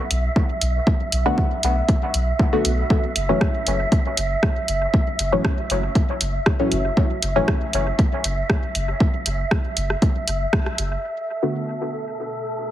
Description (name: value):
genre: dub techno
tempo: 118 BPM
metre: 4/4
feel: straight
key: B minor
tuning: A4 = 439 Hz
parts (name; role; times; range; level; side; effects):
- filtered dub chord stab; stabs; 0.0-12.7 s; A2 to F#4; -24 LUFS; left 2 dB; chorus, phaser, sidechain pumping, dub echo
- wind-like tuned noise texture; texture; 0.0-12.7 s; A4 to E5; -28 LUFS; right 2 dB; built-in reverb, sidechain pumping
- soft dub sub bass; bass; 0.1-11.0 s; F#1 to B1; -24 LUFS; equal; sidechain pumping
- punchy analog drum machine; drums; 0.1-10.9 s; hi-hat, rim click; -24 LUFS; right 1 dB; low-pass filter on hats, small room ambience, low-pass filter on snare, dub echo
- electronic kick drum; drums; 0.4-10.6 s; none; -19 LUFS; equal; overdrive, small room ambience
- dark analog pad; sustained chords; 11.9-12.7 s; B3 to D5; -42 LUFS; left 1 dB; chorus, phaser, sidechain pumping
room: light reverb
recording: heavily compressed radio sound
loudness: -19 LUFS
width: side -12 dB against mid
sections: 0.0-11.0 A section; 11.0-12.7 B section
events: band accent 10.5; filter sweep on drum 11.0-12.7; filter sweep on synth stab 11.0-12.7; filter sweep on analog synth pad 11.0-12.7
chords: 0.0 Bm7; 2.9 F#m7; 11.0 Bm7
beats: 0.36 | 0.87 1.38 1.89 2.39 | 2.90 3.41 3.92 4.43 | 4.94 5.45 5.95 6.46 | 6.97 7.48 7.99 8.50 | 9.00 9.51 10.02 10.53 | 11.04 11.55 12.05 12.56